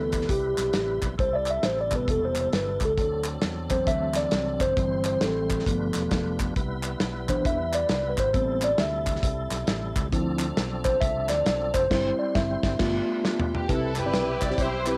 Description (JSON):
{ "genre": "uptempo gospel", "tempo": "134 BPM", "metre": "4/4", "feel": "swing 63% on 8ths", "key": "C major", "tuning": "A4 = 441 Hz", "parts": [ { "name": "mellow tine electric piano", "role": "accompaniment", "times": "0.0-15.0 s", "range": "C3 to E5", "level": "-28 LUFS", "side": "equal", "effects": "cassette tape, plate reverb" }, { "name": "tonewheel organ", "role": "sustained chords", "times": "0.0-15.0 s", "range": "C3 to C5", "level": "-38 LUFS", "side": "equal", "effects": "fast rotary speaker, chorus vibrato, cassette tape, plate reverb" }, { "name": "fingered electric bass", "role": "bass", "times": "0.0-15.0 s", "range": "E1 to E2", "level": "-35 LUFS", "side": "equal", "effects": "none" }, { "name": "warm soul drum kit", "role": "drums", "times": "0.1-14.9 s", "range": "crash cymbal, hi-hat, kick drum, snare drum, toms", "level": "-31 LUFS", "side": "equal", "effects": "cassette tape" }, { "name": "group handclap", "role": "percussion", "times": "0.1-14.9 s", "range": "none", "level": "-39 LUFS", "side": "equal", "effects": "none" }, { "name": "warm studio string section", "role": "melody", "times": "13.5-15.0 s", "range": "E4 to D5", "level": "-30 LUFS", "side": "equal", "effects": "plate reverb" } ], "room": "light reverb", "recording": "home recording on cassette", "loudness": "-26 LUFS", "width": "mono", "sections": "0.0-13.7 A section; 13.7-15.0 B section", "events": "tine electric piano solo 0.0-13.7; drum fill 11.9-13.7; band accent 11.9-13.7", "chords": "0.0 Cmaj7; 1.2 Am7; 3.0 D7; 4.8 C/G; 5.7 G7; 6.6 Cmaj7; 8.3 Am7; 10.1 Dm7; 11.9 C/G; 12.8 G7; 13.7 Cmaj7", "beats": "0.29 0.74 | 1.19 1.64 2.08 2.53 | 2.98 3.42 3.87 4.32 | 4.77 5.21 5.66 6.11 | 6.56 7.00 7.45 7.89 | 8.34 8.79 9.23 9.68 | 10.12 10.57 11.02 11.46 | 11.91 12.35 12.80 13.24 | 13.69 14.14 14.58" }